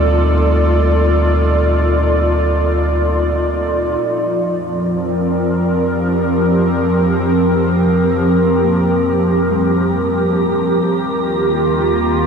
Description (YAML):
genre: ambient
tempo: free time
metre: none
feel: none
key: unclear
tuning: A4 = 443 Hz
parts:
  - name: airy breathy pad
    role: sustained chords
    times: 0.0-12.3 s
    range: Eb3 to D5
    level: -14 LUFS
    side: equal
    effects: chorus
  - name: muted felt-like synth keys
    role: arpeggios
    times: 0.0-12.3 s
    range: G3 to D5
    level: -27 LUFS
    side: left 1 dB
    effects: chorus, ping-pong delay
  - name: warm sub bass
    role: bass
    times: 0.0-12.3 s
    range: D2 to F2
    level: -19 LUFS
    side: equal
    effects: none
  - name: bowed-like drone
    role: drone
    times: 0.0-4.1 s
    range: Bb2 to Eb4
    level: -26 LUFS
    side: equal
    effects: built-in reverb
  - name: wind-like tuned noise texture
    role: texture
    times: 4.9-12.3 s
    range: Bb4 to Bb5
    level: -30 LUFS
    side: equal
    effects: built-in reverb
room: wet concert hall reverb, RT60 2.2 s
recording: dark, warm production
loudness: -13 LUFS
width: side -6 dB against mid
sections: 0.0-4.0 A section; 4.0-12.3 B section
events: fade-in on sub bass 4.0-12.3; fade-in on synth texture 4.0-12.3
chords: 0.0 Dm7; 4.0 Fsus24; 10.9 Ebadd9